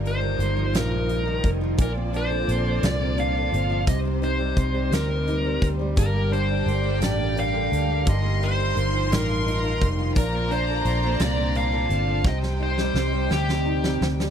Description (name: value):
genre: six-eight pop ballad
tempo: 57 BPM (dotted quarters)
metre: 6/8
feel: straight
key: unclear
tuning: A4 = 440 Hz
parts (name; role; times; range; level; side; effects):
- flamenco guitar; accompaniment; 0.0-14.3 s; G2 to Eb4; -28 LUFS; right 1 dB; double-tracked left and right
- bright studio string section; sustained chords; 0.0-14.3 s; C3 to D5; -34 LUFS; equal; none
- vintage muted fingered electric bass; bass; 0.0-14.3 s; F1 to D2; -25 LUFS; equal; none
- dark smooth lead guitar; melody; 0.1-14.1 s; G4 to F5; -27 LUFS; equal; overdrive
- huge arena drum kit; drums; 0.1-14.3 s; hi-hat, kick drum, snare drum; -26 LUFS; equal; none
- warm studio violin section; second line; 6.0-14.3 s; G5 to C6; -32 LUFS; equal; none
room: little or no reverb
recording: dry, close 1970s-style studio recording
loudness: -21 LUFS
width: side -8 dB against mid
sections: 0.0-14.3 A section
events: drum fill 12.2-14.3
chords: 0.0 Ebadd9/G; 1.8 Bbadd9; 3.9 Cm; 6.0 Gm; 8.1 Ebadd9/G; 10.2 Bbadd9; 12.2 Cm